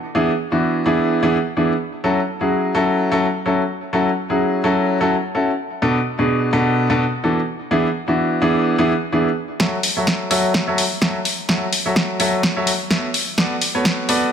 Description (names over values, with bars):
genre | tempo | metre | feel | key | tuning
piano house | 127 BPM | 4/4 | swing 56% on 16ths | F# minor | A4 = 441 Hz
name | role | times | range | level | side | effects
bright grand piano | riff | 0.1-14.3 s | B2 to E5 | -17 LUFS | equal | sidechain pumping, low-pass filter, digital delay
electronic kick drum | drums | 9.6-14.0 s | none | -27 LUFS | right 1 dB | high-pass filter on kick, studio ambience
house drum kit | drums | 9.6-14.2 s | hi-hat, snare drum | -19 LUFS | equal | studio ambience
room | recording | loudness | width
moderate lush hall reverb, RT60 2.4 s | none | -16 LUFS | side -8 dB against mid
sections
0.0-9.6 A section; 9.6-14.3 B section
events
build-up 9.6-14.3; drum fill 9.6-14.3; filter sweep on grand piano 9.6-14.3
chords
0.0 E7; 2.0 F#m7; 5.6 Bm7; 7.5 E7; 9.6 F#m7; 13.1 Bm7